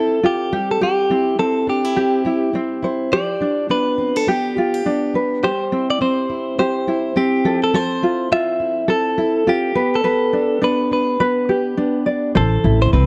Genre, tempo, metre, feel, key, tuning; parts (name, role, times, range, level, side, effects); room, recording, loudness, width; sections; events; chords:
pop; 104 BPM; 4/4; swing 60% on 16ths; C major; A4 = 441 Hz
direct-recorded clean electric guitar; melody; 0.0-13.1 s; G4 to E5; -22 LUFS; equal; spring reverb
tenor ukulele; accompaniment; 0.0-13.1 s; C4 to D5; -22 LUFS; equal
fingerpicked plugged-in steel-string acoustic guitar; arpeggios; 0.0-13.1 s; E3 to A4; -27 LUFS; equal
upright bass; bass; 12.4-13.1 s; A1 to C2; -16 LUFS; equal
little or no reverb; dry, close 1970s-style studio recording; -19 LUFS; mono
0.0-12.4 A section
0.0 Fmaj7; 0.5 C; 3.1 G7; 5.4 C; 7.4 Fmaj7; 9.8 G; 12.4 Am